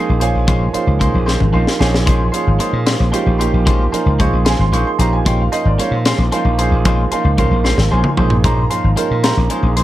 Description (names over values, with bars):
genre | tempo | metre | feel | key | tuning
electric jazz fusion | 75 BPM (dotted quarters) | 6/8 | straight | Bb dorian | A4 = 441 Hz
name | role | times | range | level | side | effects
clear concert grand piano | accompaniment | 0.0-9.8 s | F3 to Db6 | -19 LUFS | right 6 dB | none
clean electric guitar | stabs | 0.0-9.8 s | Ab3 to C5 | -22 LUFS | left 3 dB | lush chorus
slap bass | bass | 0.1-9.8 s | Ab1 to Bb2 | -15 LUFS | left 1 dB | none
crisp fusion drum kit | drums | 0.2-9.8 s | hi-hat, kick drum, snare drum, toms | -19 LUFS | left 1 dB | none
room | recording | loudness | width
light reverb | none | -13 LUFS | side -14 dB against mid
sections
0.0-9.8 A section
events
drum fill 1.3-2.1, 7.6-8.4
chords
0.0 Bbm9